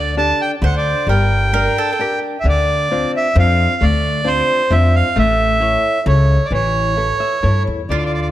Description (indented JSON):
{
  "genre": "italian folk, Italian serenade",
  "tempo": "132 BPM",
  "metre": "3/4",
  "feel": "straight",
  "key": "D minor",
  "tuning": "A4 = 439 Hz",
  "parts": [
    { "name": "accordion", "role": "melody", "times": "0.0-8.3 s", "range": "C5 to A5", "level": "-17 LUFS", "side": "right 2 dB", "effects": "none" },
    { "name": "mandolin", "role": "second line", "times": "0.0-2.4, 7.9-8.3 s", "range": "F4 to D5", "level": "-23 LUFS", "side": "right 5 dB", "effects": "none" },
    { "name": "flamenco guitar", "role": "accompaniment", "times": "0.0-8.3 s", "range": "D3 to E5", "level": "-22 LUFS", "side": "left 4 dB", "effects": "none" },
    { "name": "upright bass", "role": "bass", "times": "0.0-8.3 s", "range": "G1 to G2", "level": "-16 LUFS", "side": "equal", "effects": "none" }
  ],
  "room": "light reverb",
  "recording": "none",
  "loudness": "-13 LUFS",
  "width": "side -13 dB against mid",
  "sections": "0.0-2.5 A section; 2.5-8.3 B section",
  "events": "nylon-string guitar fill 7.0-7.9",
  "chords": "0.0 Dsus4; 0.6 D7; 1.1 Gm; 2.5 Dm7; 5.2 A",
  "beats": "0.18 0.63 | 1.09 1.54 2.00 | 2.46 2.91 3.37 | 3.82 4.27 4.72 | 5.17 5.62 6.08 | 6.53 6.98 7.44 | 7.89"
}